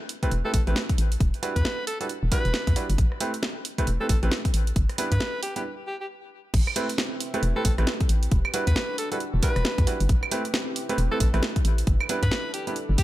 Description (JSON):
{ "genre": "UK garage, two-step garage", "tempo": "135 BPM", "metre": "4/4", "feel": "swing 60% on 16ths", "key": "A dorian", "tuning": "A4 = 440 Hz", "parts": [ { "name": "house drum kit", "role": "drums", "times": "0.1-13.0 s", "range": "claves, crash cymbal, hi-hat, rim click, snare drum", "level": "-30 LUFS", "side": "right 1 dB", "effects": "none" }, { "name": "clear concert grand piano", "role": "stabs", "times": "0.2-12.7 s", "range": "G3 to B4", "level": "-31 LUFS", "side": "right 2 dB", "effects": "ping-pong delay" }, { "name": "electronic kick drum", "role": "drums", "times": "0.2-13.0 s", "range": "none", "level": "-24 LUFS", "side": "equal", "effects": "none" }, { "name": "hollow knocking FM bass", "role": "bass", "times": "0.3-13.0 s", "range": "E1 to G2", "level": "-23 LUFS", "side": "equal", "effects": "sidechain pumping" }, { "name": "edgy alto saxophone", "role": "melody", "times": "0.4-13.0 s", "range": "G4 to B4", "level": "-33 LUFS", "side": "equal", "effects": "ping-pong delay" }, { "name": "warm analog pad", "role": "sustained chords", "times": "6.5-13.0 s", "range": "C4 to B4", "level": "-38 LUFS", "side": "equal", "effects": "chorus, sidechain pumping" } ], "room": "digital ambience", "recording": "none", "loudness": "-22 LUFS", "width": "side -16 dB against mid", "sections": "0.0-6.5 A section; 6.5-13.0 B section", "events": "break 5.6-6.5; drop 6.5-13.0", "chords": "0.0 Am9; 1.2 Em9; 3.0 Am9; 4.8 G6; 6.5 Am9; 8.3 Em9; 10.1 Am9; 11.9 G6" }